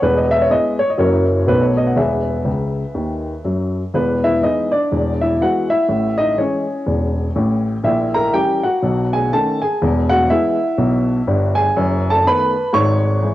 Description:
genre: jazz, stride piano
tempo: 123 BPM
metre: 4/4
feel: swing 59% on 8ths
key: E major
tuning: A4 = 440 Hz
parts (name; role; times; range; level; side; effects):
- dark upright piano; solo; 0.0-13.3 s; E1 to C#6; -15 LUFS; equal; cassette tape
room: moderate spring reverb, RT60 2.3 s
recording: home recording on cassette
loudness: -15 LUFS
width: side -15 dB against mid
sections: 0.0-3.9 A section; 3.9-13.3 A section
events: upright piano fill 2.5-3.9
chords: 0.0 E; 1.0 F#7; 1.5 B7; 2.0 E; 4.9 E7; 5.9 Amaj7; 7.8 A#dim7; 8.8 B9; 9.8 E; 11.8 B7/F#; 12.7 E/G#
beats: | 0.02 0.51 0.99 1.49 | 1.97 2.46 2.95 3.44 | 3.93 4.42 4.91 5.40 | 5.89 6.38 6.87 7.36 | 7.85 8.34 8.82 9.31 | 9.80 10.29 10.78 11.27 | 11.76 12.25 12.73 13.22

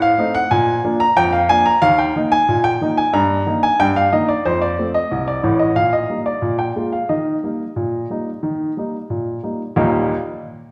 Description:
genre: ragtime piano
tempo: 91 BPM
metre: 2/4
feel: straight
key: Eb major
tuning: A4 = 439 Hz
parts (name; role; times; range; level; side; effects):
- warm upright piano; solo; 0.0-10.1 s; A1 to Bb5; -18 LUFS; equal; none
room: wet recital hall reverb, RT60 1.5 s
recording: recorded in a church or concert hall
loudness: -18 LUFS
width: mono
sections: 0.0-9.8 A section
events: none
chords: 0.0 Adim; 0.5 Bb; 1.8 Eb5; 3.1 Eb/G; 4.4 F; 5.8 Eb/Bb; 6.4 Bb5; 7.1 Eb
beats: | 0.50 1.16 | 1.81 2.47 | 3.13 3.79 | 4.45 5.10 | 5.76 6.42 | 7.09 7.76 | 8.43 9.09 | 9.76

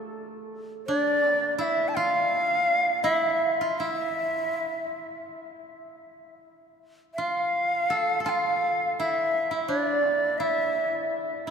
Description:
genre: japanese traditional, Japanese chamber music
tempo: 83 BPM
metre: 4/4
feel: rubato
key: D hirajoshi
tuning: A4 = 438 Hz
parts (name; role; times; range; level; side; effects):
- koto; second line; 0.0-11.5 s; A3 to A4; -31 LUFS; right 1 dB; none
- bright reedy shakuhachi; melody; 0.9-11.5 s; D5 to A5; -25 LUFS; equal; none
room: wet cathedral reverb, RT60 5.2 s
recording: in a vast, echoing space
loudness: -23 LUFS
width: side -6 dB against mid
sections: 0.0-11.5 A section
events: none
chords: none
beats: | 0.16 0.87 1.59 2.32 | 3.05 3.79 4.54 5.30 | 6.05 6.80 7.54 8.26 | 8.97 9.69 10.39 11.11

